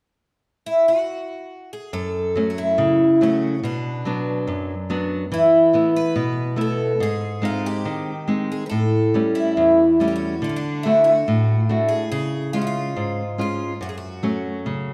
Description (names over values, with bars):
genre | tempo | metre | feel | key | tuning
fado-style ballad | 71 BPM | 2/4 | rubato | F# minor | A4 = 440 Hz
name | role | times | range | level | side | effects
picked twelve-string acoustic guitar | melody | 0.7-14.9 s | C#4 to B4 | -22 LUFS | equal | none
nylon-string guitar | accompaniment | 1.9-14.9 s | E2 to F#4 | -25 LUFS | equal | none
room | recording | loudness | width
moderate recital hall reverb, RT60 1.6 s | dark, warm production | -21 LUFS | mono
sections
0.2-1.9 A section; 1.9-14.9 B section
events
none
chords
0.2 N.C.; 1.9 F#m; 3.6 Bm; 5.3 Esus4; 7.0 G#; 8.7 A7; 10.4 D; 12.1 C#; 13.8 F#m